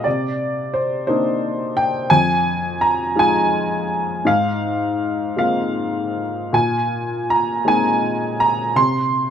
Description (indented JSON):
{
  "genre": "classical, lyrical solo piano",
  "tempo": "52-58 BPM (dotted quarters)",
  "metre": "6/8",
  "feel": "rubato",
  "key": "unclear",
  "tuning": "A4 = 441 Hz",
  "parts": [
    { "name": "warm upright piano", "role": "solo", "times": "0.0-9.3 s", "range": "F2 to C6", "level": "-17 LUFS", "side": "equal", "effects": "none" }
  ],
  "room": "light reverb",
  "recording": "close, detailed microphones",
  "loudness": "-17 LUFS",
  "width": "side -8 dB against mid",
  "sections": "0.0-9.3 A section",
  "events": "none",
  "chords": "0.1 Cm9; 2.1 Fm7; 4.3 Ab69; 6.5 Bb9sus4; 8.8 N.C."
}